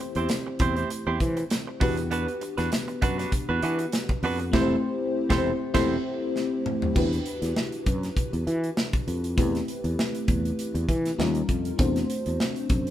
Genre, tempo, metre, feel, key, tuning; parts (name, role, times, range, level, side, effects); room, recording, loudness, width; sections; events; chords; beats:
polished 1980s jazz-funk pop; 99 BPM; 4/4; swing 54% on 16ths; E minor; A4 = 440 Hz
FM electric piano with soft pad layer; accompaniment; 0.0-12.9 s; G3 to C5; -28 LUFS; left 2 dB; chorus
direct-recorded clean electric guitar; riff; 0.0-6.0 s; B3 to C5; -30 LUFS; right 5 dB
sustaining fretless electric bass; bass; 0.2-12.9 s; E1 to E3; -29 LUFS; equal
modern studio drum kit; drums; 0.2-12.9 s; crash cymbal, hi-hat, kick drum, snare drum, toms; -28 LUFS; equal
moderate stone room reverb, RT60 1.2 s; band playing live in one room; -24 LUFS; side -12 dB against mid
0.0-7.0 A section; 7.0-12.9 B section
band accent 4.5-7.0; drum fill 6.3-7.0
0.0 Am7/E; 1.8 Gmaj7/E; 4.5 C6/E; 7.0 Em9; 9.4 Am9/E; 11.2 D#9; 11.8 D7/E
0.30 0.90 1.51 | 2.11 2.72 3.32 3.93 | 4.53 5.14 5.74 6.35 | 6.95 7.56 8.16 8.77 | 9.37 9.98 10.58 11.19 | 11.79 12.40